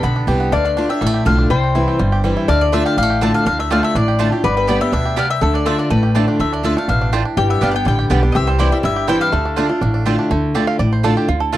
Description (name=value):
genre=bluegrass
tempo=246 BPM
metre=4/4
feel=straight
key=D dorian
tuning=A4 = 440 Hz
part: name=bluegrass banjo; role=melody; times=0.0-11.6 s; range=G3 to F5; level=-24 LUFS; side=right 6 dB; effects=none
part: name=mandolin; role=melody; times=0.0-10.0 s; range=B4 to B5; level=-22 LUFS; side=left 3 dB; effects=none
part: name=lap resonator guitar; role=second line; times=0.0-10.1 s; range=G4 to D5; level=-23 LUFS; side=left 6 dB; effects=none
part: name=picked acoustic archtop guitar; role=accompaniment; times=0.0-11.6 s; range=G2 to G4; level=-18 LUFS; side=left 1 dB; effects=none
part: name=upright bass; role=bass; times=0.0-11.6 s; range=G1 to D2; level=-19 LUFS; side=right 1 dB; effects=none
part: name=mandolin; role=stabs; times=2.7-11.6 s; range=A3 to A5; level=-22 LUFS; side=right 8 dB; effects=none
room=little or no reverb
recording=dry, close 1970s-style studio recording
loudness=-14 LUFS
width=side -14 dB against mid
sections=0.0-10.3 A section; 10.3-11.6 B section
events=five-string banjo solo 10.3-11.6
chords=0.0 G; 0.5 Dm; 1.5 C; 2.5 Dm; 4.4 G; 5.4 Dm; 7.4 G; 8.4 C; 9.3 Dm